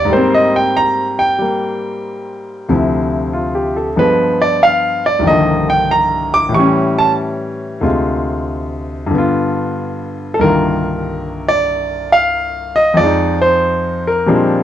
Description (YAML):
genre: solo jazz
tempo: 93 BPM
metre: 4/4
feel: swing 67% on 8ths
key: C minor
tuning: A4 = 439 Hz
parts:
  - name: clear grand piano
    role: solo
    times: 0.0-14.6 s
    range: C2 to D6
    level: -13 LUFS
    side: equal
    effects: none
room: light reverb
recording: worn, warbling old tape, cassette tape, warbly pitch drift, nothing above 10.6 kHz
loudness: -13 LUFS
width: side -11 dB against mid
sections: 0.0-10.4 A section; 10.4-14.6 B section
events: grand piano solo 0.0-10.4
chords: 0.1 Abmaj9; 2.7 Dm9; 4.0 G7b9; 5.3 Cm11; 6.5 A7; 7.8 Dm7b5; 9.1 G7; 10.4 Cm11; 13.0 Fm7